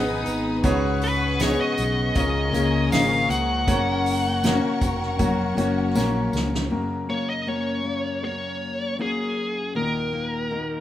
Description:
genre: pop ballad.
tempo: 79 BPM.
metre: 4/4.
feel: straight.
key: F# major.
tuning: A4 = 442 Hz.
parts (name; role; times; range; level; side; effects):
muted French horn section; second line; 0.0-0.8 s; D#4; -33 LUFS; right 1 dB; none.
clear grand piano; accompaniment; 0.0-10.8 s; D#2 to F#5; -26 LUFS; left 1 dB; none.
clear studio string section; sustained chords; 0.0-6.7 s; A#4 to D#6; -33 LUFS; left 2 dB; none.
fingerpicked steel-string acoustic guitar; arpeggios; 0.0-10.8 s; F#2 to G#4; -28 LUFS; left 4 dB; none.
fingered electric bass; bass; 0.0-6.7 s; E#1 to C#2; -27 LUFS; equal; none.
soft-mallet drum kit; drums; 0.3-6.7 s; hi-hat, kick drum, snare drum; -28 LUFS; right 1 dB; none.
tambourine; percussion; 0.3-6.5 s; none; -42 LUFS; right 3 dB; none.
smooth overdriven lead guitar; melody; 1.0-10.8 s; G#4 to F#5; -26 LUFS; equal; none.
room: light reverb, small room ambience.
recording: rough home demo mix.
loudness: -21 LUFS.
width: side -12 dB against mid.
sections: 0.0-6.7 A section; 6.7-10.8 B section.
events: drum fill 6.0-6.7.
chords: 0.0 G#m; 0.6 C#7sus4; 2.2 C#6; 3.7 F#; 9.8 D#m.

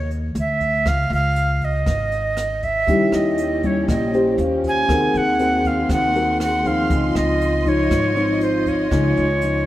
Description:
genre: bossa nova.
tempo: 119 BPM.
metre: 4/4.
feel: straight.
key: Db major.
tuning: A4 = 440 Hz.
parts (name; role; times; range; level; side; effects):
breathy bright jazz flute; melody; 0.0-9.7 s; C5 to Ab5; -21 LUFS; right 2 dB; none.
upright bass; bass; 0.0-9.7 s; Ab1 to Eb2; -24 LUFS; equal; none.
jazz brush drum kit; drums; 0.1-9.5 s; hi-hat, kick drum, rim click; -26 LUFS; equal; none.
nylon-string guitar; accompaniment; 2.9-9.7 s; Ab2 to C5; -21 LUFS; left 2 dB; none.
vibraphone with medium mallets; accompaniment; 2.9-9.7 s; C4 to C6; -25 LUFS; left 1 dB; none.
warm symphonic string section; sustained chords; 2.9-9.7 s; Bb3 to C6; -29 LUFS; equal; none.
room: moderate echo chamber reverb, RT60 2.2 s.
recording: heard from further back in the room.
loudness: -17 LUFS.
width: side -14 dB against mid.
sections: 0.0-9.7 A section.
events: none.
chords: 0.4 Dsus2; 0.9 Dbadd9; 2.9 Eb7b9; 4.4 Eb13; 4.9 Ab9/Eb; 6.9 Dbmaj9.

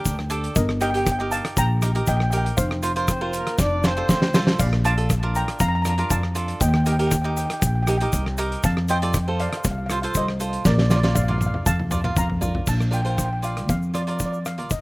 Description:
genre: calypso.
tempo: 119 BPM.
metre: 4/4.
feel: straight.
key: Bb major.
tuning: A4 = 440 Hz.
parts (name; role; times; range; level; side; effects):
cavaquinho; accompaniment; 0.0-14.7 s; D4 to F5; -28 LUFS; right 2 dB; slapback echo.
upright bass; bass; 0.1-14.8 s; F1 to F2; -23 LUFS; equal; none.
oversized low-tuned drum kit; drums; 0.1-14.8 s; crash cymbal, hi-hat, kick drum, rim click, snare drum, splash cymbal, toms; -23 LUFS; equal; none.
egg shaker; percussion; 0.1-14.8 s; none; -32 LUFS; left 4 dB; none.
steel pan; melody; 0.6-14.8 s; Bb4 to Bb5; -27 LUFS; equal; slapback echo.
dark horn section; second line; 3.1-4.4 s; Bb3 to D5; -26 LUFS; left 1 dB; slapback echo.
room: little or no reverb.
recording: recorded outdoors, with no room sound.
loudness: -19 LUFS.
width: side -22 dB against mid.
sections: 0.0-12.7 A section; 12.7-14.8 B section.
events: drum fill 3.6-4.6, 10.7-12.7.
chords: 0.0 Gmadd9; 0.6 Eb/G; 2.6 Fsus4; 3.6 F; 4.6 Bb; 6.6 Eb; 8.6 F7; 10.7 Bbmaj7; 12.7 Bb.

